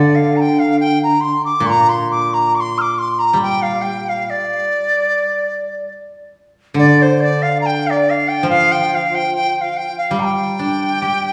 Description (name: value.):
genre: chinese traditional.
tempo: 70 BPM.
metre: 4/4.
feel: rubato.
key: G yu mode.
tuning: A4 = 440 Hz.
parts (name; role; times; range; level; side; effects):
dizi; melody; 0.0-11.3 s; C5 to F6; -18 LUFS; equal; none.
steel-string zither; accompaniment; 0.0-11.3 s; Bb2 to G4; -20 LUFS; equal; none.
room: wet recital hall reverb, RT60 1.5 s.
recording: recorded in a church or concert hall, small room ambience.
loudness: -16 LUFS.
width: mono.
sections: 0.0-11.3 A section.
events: none.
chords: none.